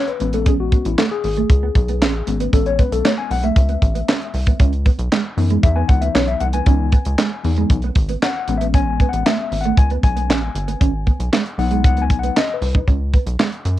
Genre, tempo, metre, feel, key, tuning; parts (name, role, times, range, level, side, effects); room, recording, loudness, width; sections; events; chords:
early-eighties boogie funk; 116 BPM; 4/4; straight; C# minor; A4 = 441 Hz
mellow tine electric piano; accompaniment; 0.0-12.9 s; E3 to G#5; -22 LUFS; left 8 dB; medium stereo tremolo
mellow electric guitar; riff; 0.0-13.7 s; G#3 to D#4; -24 LUFS; right 11 dB; ensemble chorus
tight funk drum kit; drums; 0.1-13.8 s; handclaps, hi-hat, kick drum, snare drum; -17 LUFS; equal; cassette tape
rubbery square bass; bass; 0.2-13.8 s; G1 to F#2; -20 LUFS; equal
little or no reverb; home recording on cassette; -15 LUFS; side -14 dB against mid
0.0-12.9 A section
tine electric piano solo 0.0-12.9
0.2 Amaj7; 4.6 C#m7; 8.5 Amaj7; 10.8 G#m7; 12.9 C#7(no3)